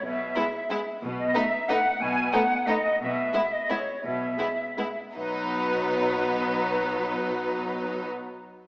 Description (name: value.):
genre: classical, orchestral ballroom waltz.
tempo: 152-196 BPM.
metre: 3/4.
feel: rubato.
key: B major.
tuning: A4 = 440 Hz.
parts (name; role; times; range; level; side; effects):
flute section; second line; 0.0-8.1 s; B4 to G#5; -27 LUFS; equal; none.
rich chamber double bass section; bass; 0.0-8.1 s; B1; -45 LUFS; equal; none.
rich studio cello section; bass; 0.0-8.1 s; B2; -34 LUFS; equal; none.
bright symphonic violin section; melody; 0.4-8.1 s; D#4 to E4; -32 LUFS; left 1 dB; none.
rich chamber violin section; second line; 0.4-8.1 s; B3; -33 LUFS; equal; none.
rich chamber viola section; accompaniment; 0.4-8.1 s; F#3 to A3; -32 LUFS; equal; none.
room: wet scoring stage reverb, RT60 1.7 s.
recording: small speaker sound.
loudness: -24 LUFS.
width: side -23 dB against mid.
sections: 0.0-5.2 A section; 5.2-7.3 B section.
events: slowing down 2.5-5.2.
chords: 0.0 E/B; 1.0 B7; 3.0 E/B; 5.2 B.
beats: | 0.04 0.36 0.70 | 1.02 1.34 1.69 | 2.01 2.33 2.67 | 3.00 3.33 3.69 | 4.03 4.38 4.77 | 5.15 5.51 5.89 | 6.24 6.60 6.97.